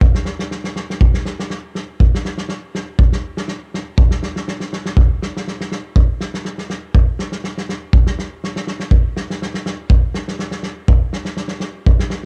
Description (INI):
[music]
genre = balkan folk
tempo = 122 BPM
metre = 2/4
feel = straight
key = none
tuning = none
[part]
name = natural country drum kit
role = percussion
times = 0.0-12.2 s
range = kick drum, snare drum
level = -18 LUFS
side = equal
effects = cassette tape
[sound]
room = little or no reverb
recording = home recording on cassette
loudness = -19 LUFS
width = mono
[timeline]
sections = 0.0-5.0 A section; 5.0-12.3 B section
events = none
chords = none